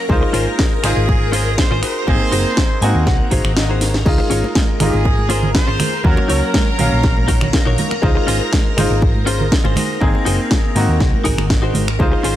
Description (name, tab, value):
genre	nu-disco, nu disco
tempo	121 BPM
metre	4/4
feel	straight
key	Db major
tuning	A4 = 440 Hz
part	bright grand piano	accompaniment	0.0-12.4 s	Gb3 to F5	-22 LUFS	equal	sidechain pumping, tape echo
part	string machine, full ensemble	sustained chords	0.0-12.4 s	Bb4 to C6	-25 LUFS	equal	phaser, ensemble chorus, sidechain pumping
part	hollow-body short-scale fingered electric bass	bass	0.1-12.4 s	Gb1 to Ab2	-19 LUFS	equal	tube saturation
part	electronic kick drum	drums	0.1-12.1 s	none	-17 LUFS	equal	studio reverb
part	direct-recorded clean electric guitar	riff	0.2-12.4 s	Db4 to Ab5	-24 LUFS	left 2 dB	wide subtle chorus, tape echo
part	house drum kit	drums	0.3-12.3 s	crash cymbal, finger snaps, hi-hat, snare drum	-22 LUFS	equal	studio reverb
part	bright trumpet section	melody	0.8-7.7 s	Ab4 to C5	-24 LUFS	right 2 dB	tape echo
part	congas	percussion	4.1-12.1 s	none	-24 LUFS	right 3 dB	none
room	little or no reverb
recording	dry, gritty hardware recording, transformer saturation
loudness	-13 LUFS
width	side -12 dB against mid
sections	0.0-12.4 A section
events	clean electric guitar fill 2.6-4.1; kick drops out 3.6-4.1; drum fill 3.8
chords	0.1 Dbmaj7; 1.8 Ab7; 4.1 Dbmaj7; 6.0 Ebm7; 8.0 Dbmaj7; 9.8 Ab7